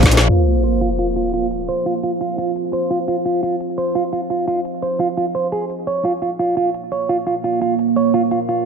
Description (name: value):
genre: dark technical drum and bass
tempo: 172 BPM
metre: 4/4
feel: straight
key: unclear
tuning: A4 = 442 Hz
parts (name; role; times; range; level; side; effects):
- deep dark ambient pad; sustained chords; 0.0-8.7 s; Bb3 to C6; -22 LUFS; right 2 dB; chorus, built-in reverb, sidechain pumping
- drum and bass drum kit; drums; 0.0-8.6 s; hi-hat, ride cymbal, shaker, snare drum; -17 LUFS; equal; overdrive, small room ambience
- clean electric guitar; arpeggios; 0.3-8.7 s; F4 to Db5; -19 LUFS; right 2 dB; sidechain pumping, low-pass filter, dub echo
- sub drop; sound effects; 0.3-1.7 s; none; -19 LUFS; left 1 dB; none
room: light reverb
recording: low-pass filter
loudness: -17 LUFS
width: side -6 dB against mid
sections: 0.3-8.7 A section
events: drum fill 0.0; band accent 0.2; impact 0.3-1.7; filter sweep on ambient pad 0.3-8.7; filter sweep on clean electric guitar 0.3-8.7; filter sweep 0.3-8.7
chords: 0.3 F5; 5.9 Bbm